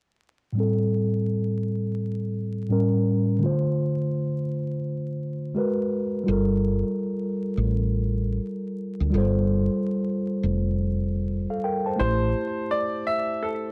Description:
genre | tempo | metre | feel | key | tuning
lo-fi hip hop | 84 BPM | 4/4 | swing 62% on 16ths | G dorian | A4 = 440 Hz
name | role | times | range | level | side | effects
mellow tine electric piano | accompaniment | 0.5-13.7 s | A2 to A5 | -27 LUFS | equal | cassette tape, low-pass filter
woody fretless electric bass | bass | 6.3-12.3 s | F1 to D2 | -26 LUFS | equal | ensemble chorus
bright upright piano | melody | 12.0-13.7 s | A4 to E5 | -29 LUFS | equal | low-pass filter, plate reverb, tape echo
room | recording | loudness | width
moderate studio reverb, RT60 0.5 s | dark, warm production, vinyl crackle | -25 LUFS | mono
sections
0.6-12.0 A section; 12.0-13.7 B section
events
filter sweep on tine electric piano 0.6-12.0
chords
0.6 Am7; 2.7 A7b9; 3.4 Dm7; 5.6 Abm9; 6.3 Gm9; 12.0 Am7

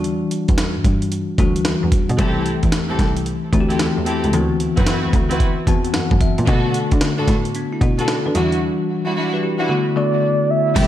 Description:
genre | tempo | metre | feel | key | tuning
R&B, new jack swing | 112 BPM | 4/4 | swing 65% on 16ths | E minor | A4 = 436 Hz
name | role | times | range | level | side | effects
bell-like tine electric piano | accompaniment | 0.0-10.9 s | C#3 to A5 | -21 LUFS | left 3 dB | fast stereo tremolo
warm cello | bass | 0.0-10.9 s | C2 to D3 | -22 LUFS | equal | none
breakbeat sampler-style drum kit | drums | 0.0-10.9 s | crash cymbal, hi-hat, kick drum, snare drum, tambourine | -19 LUFS | equal | vintage 12-bit sampler grit
warm studio string section | stabs | 2.2-10.9 s | G3 to B4 | -24 LUFS | right 2 dB | tape echo
soft octave-layered synth lead | melody | 10.0-10.9 s | D5 to E5 | -18 LUFS | right 3 dB | chorus
phased analog pad | sustained chords | 10.8-10.9 s | C3 to E4 | -25 LUFS | right 4 dB | phaser, chorus
room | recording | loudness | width
light reverb, digital ambience | none | -16 LUFS | side -12 dB against mid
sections
0.0-10.8 A section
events
tine electric piano fill 5.4-6.5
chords
0.0 Em9; 2.2 C6; 4.3 D13; 6.5 Bm7; 8.3 Em9; 9.7 Bm7

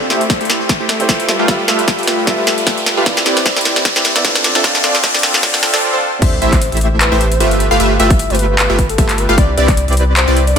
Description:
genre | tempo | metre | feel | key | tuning
future bass | 152 BPM | 4/4 | swing 55% on 16ths, half-time | C major | A4 = 440 Hz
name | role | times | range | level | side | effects
warm grand piano | accompaniment | 0.0-6.2 s | C3 to E5 | -22 LUFS | right 2 dB | sidechain pumping, ping-pong delay
supersaw stab | riff | 0.0-10.6 s | A3 to F5 | -16 LUFS | right 1 dB | sidechain pumping, ping-pong delay
riser and sub drop | sound effects | 0.0-7.8 s | none | -20 LUFS | equal | none
trap drum kit | drums | 0.1-10.6 s | crash cymbal, handclaps, hi-hat, snare drum, toms | -16 LUFS | left 1 dB | overdrive, high-pass filter on snare, studio ambience, high-pass filter on hats, high-pass filter on toms, high-pass filter on cymbals
electronic kick drum | drums | 0.3-9.8 s | none | -14 LUFS | equal | overdrive, studio ambience
soft octave-layered synth lead | melody | 6.2-10.6 s | A4 to E5 | -21 LUFS | left 2 dB | chorus, sidechain pumping, digital delay
wide unison pluck | arpeggios | 6.2-10.6 s | D5 to F5 | -22 LUFS | moving between left 5 dB and right 7 dB | auto-pan, sidechain pumping
saturated sub bass | bass | 6.2-10.6 s | G1 to C2 | -16 LUFS | equal | sidechain pumping
room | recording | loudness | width
moderate lush hall reverb, RT60 1.9 s, digital ambience | high-pass filter | -11 LUFS | side -7 dB against mid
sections
0.0-6.2 A section; 6.2-10.6 B section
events
build-up 0.0-6.2; drum fill 0.0-5.8, 5.8-6.2; riser 0.0-5.8; filter sweep on supersaw synth 0.0-6.2; break 5.8-6.2; drop 6.2-10.6; impact 6.2-7.8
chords
0.0 Am7; 1.3 G13; 3.1 Cmaj9; 4.4 Dm7; 6.2 Am7; 7.6 G13; 9.4 Cmaj9

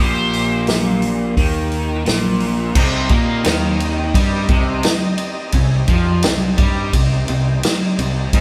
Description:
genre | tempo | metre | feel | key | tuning
blues rock power trio and southern rock | 86 BPM | 4/4 | straight | C minor | A4 = 440 Hz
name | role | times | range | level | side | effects
octave-fuzz lead guitar | melody | 0.0-2.0 s | C5 | -26 LUFS | equal | wah, distortion
dark smooth lead guitar | second line | 0.0-2.0 s | G4 | -32 LUFS | equal | overdrive
distorted electric guitar | riff | 0.0-8.4 s | Ab2 to Bb3 | -22 LUFS | equal | distortion
fuzz fingered electric bass | bass | 0.0-8.4 s | Ab1 to Bb2 | -24 LUFS | equal | overdrive
vintage drum kit | drums | 0.3-8.4 s | crash cymbal, hi-hat, kick drum, ride cymbal, snare drum | -20 LUFS | equal | none
overdriven tonewheel organ | sustained chords | 2.8-8.4 s | C4 to Eb5 | -31 LUFS | equal | chorus vibrato
room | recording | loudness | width
moderate stone room reverb, RT60 1.1 s | band playing live in one room | -17 LUFS | mono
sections
0.0-2.8 A section; 2.8-8.4 B section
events
none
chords
0.0 Cm

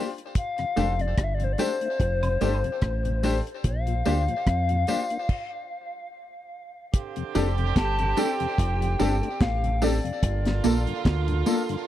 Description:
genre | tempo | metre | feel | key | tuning
lovers rock reggae | 73 BPM | 4/4 | swing 56% on 16ths | F major | A4 = 443 Hz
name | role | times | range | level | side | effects
clear baby grand piano | accompaniment | 0.0-11.6 s | Bb3 to C5 | -34 LUFS | left 5 dB | tape echo
mellow tonewheel organ | accompaniment | 0.0-11.8 s | F2 to F4 | -33 LUFS | left 6 dB | chorus vibrato, slow rotary speaker
mellow electric guitar | stabs | 0.0-11.6 s | A3 to A4 | -27 LUFS | right 2 dB | analog chorus
deep reggae drum kit | drums | 0.2-11.9 s | crash cymbal, hi-hat, kick drum, rim click, snare drum | -24 LUFS | equal | none
reedy FM lead | melody | 0.4-10.8 s | C5 to A5 | -30 LUFS | left 3 dB | chorus, tape echo
deep dub fingered electric bass | bass | 0.8-11.4 s | F1 to F2 | -26 LUFS | equal | none
tambourine and woodblock | percussion | 0.8-11.7 s | none | -40 LUFS | right 2 dB | tape echo
bright saxophone section | second line | 6.9-11.9 s | D3 to G4 | -31 LUFS | right 10 dB | none
room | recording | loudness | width
studio ambience | dry, close 1970s-style studio recording | -23 LUFS | side -12 dB against mid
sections
0.0-6.9 A section; 6.9-11.9 B section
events
stop 5.3-6.9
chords
0.4 F69; 3.6 Bb6; 6.9 F69; 10.2 Gm9

